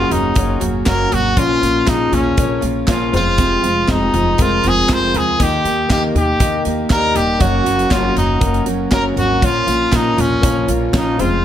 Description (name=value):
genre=piano-driven pop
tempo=119 BPM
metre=4/4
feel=straight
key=Bb minor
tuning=A4 = 439 Hz
part: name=brilliant trumpet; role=melody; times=0.0-11.4 s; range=Db4 to C5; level=-18 LUFS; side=equal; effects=none
part: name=warm concert grand piano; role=accompaniment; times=0.0-11.4 s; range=Bb2 to Eb5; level=-20 LUFS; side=left 6 dB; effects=none
part: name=picked steel-string acoustic guitar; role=riff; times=0.0-11.4 s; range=F2 to G4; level=-21 LUFS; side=right 5 dB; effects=none
part: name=upright bass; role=bass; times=0.0-11.4 s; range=Eb1 to Eb2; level=-22 LUFS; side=equal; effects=none
part: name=modern studio drum kit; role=drums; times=0.1-11.3 s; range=handclaps, hi-hat, kick drum, snare drum, toms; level=-19 LUFS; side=equal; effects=none
room=light reverb, studio ambience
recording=none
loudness=-13 LUFS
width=side -10 dB against mid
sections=0.0-11.4 A section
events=none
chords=0.0 Gb; 1.4 Bbm; 3.1 Fm; 5.4 Eb; 7.4 Gb; 9.4 Bbm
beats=0.37 0.87 | 1.37 1.88 2.38 2.88 | 3.39 3.89 4.39 4.90 | 5.40 5.90 6.41 6.91 | 7.41 7.92 8.42 8.92 | 9.43 9.93 10.43 10.94 | 11.44